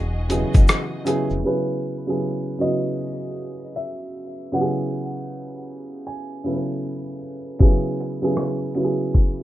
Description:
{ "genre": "lo-fi hip hop", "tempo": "78 BPM", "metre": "4/4", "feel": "swing 63% on 16ths", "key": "E major", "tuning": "A4 = 440 Hz", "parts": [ { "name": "clear studio string section", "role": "sustained chords", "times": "0.0-1.4 s", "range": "E3 to D#5", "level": "-34 LUFS", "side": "equal", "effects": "low-pass filter" }, { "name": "deep dub fingered electric bass", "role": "bass", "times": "0.0-1.4 s", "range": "E1 to F#1", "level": "-24 LUFS", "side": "equal", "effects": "none" }, { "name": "dark upright piano", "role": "accompaniment", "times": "0.3-9.4 s", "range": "C#3 to B4", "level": "-24 LUFS", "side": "right 1 dB", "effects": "low-pass filter" }, { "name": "lo-fi sampler-style drum kit", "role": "drums", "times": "0.3-1.3, 7.6-9.4 s", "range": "hi-hat, kick drum, rim click", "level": "-16 LUFS", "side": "equal", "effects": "none" }, { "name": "egg shaker", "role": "percussion", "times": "0.3-1.4 s", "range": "none", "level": "-40 LUFS", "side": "left 6 dB", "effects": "none" }, { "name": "felt-muted upright piano", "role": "melody", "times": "1.5-7.2 s", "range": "B4 to G#5", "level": "-31 LUFS", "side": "equal", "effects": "low-pass filter, analog delay" } ], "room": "light reverb", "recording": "rough home demo mix, low-pass filter", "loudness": "-20 LUFS", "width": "side -14 dB against mid", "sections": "0.0-1.4 A section; 1.4-9.4 B section", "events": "filter sweep 1.4-9.4", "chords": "0.0 Emaj9; 1.4 Emaj7; 4.5 F#m9; 7.6 E" }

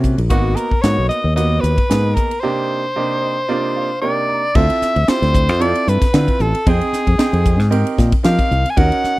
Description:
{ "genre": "electric jazz fusion", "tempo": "113 BPM", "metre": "4/4", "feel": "swing 54% on 16ths", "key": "unclear", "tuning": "A4 = 440 Hz", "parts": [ { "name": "bright concert grand piano", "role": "accompaniment", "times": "0.0-9.2 s", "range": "C3 to Bb5", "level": "-22 LUFS", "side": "right 4 dB", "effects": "none" }, { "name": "fingered electric bass", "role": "bass", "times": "0.0-9.1 s", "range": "Ab1 to F3", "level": "-16 LUFS", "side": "equal", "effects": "none" }, { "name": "crisp fusion drum kit", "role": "drums", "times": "0.0-9.2 s", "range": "crash cymbal, hi-hat, kick drum, ride cymbal, snare drum", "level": "-18 LUFS", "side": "equal", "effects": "none" }, { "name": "edgy soprano saxophone", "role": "melody", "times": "0.3-9.2 s", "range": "Gb4 to Ab5", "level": "-19 LUFS", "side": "equal", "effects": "slapback echo" } ], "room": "little or no reverb", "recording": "dry, close 1970s-style studio recording", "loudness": "-14 LUFS", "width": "side -18 dB against mid", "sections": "0.0-4.6 A section; 4.6-9.2 B section", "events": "break 2.4-4.6; grand piano fill 3.0-4.6", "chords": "0.3 Abm9; 2.4 Cm9; 4.6 Dm9; 6.7 Fm9" }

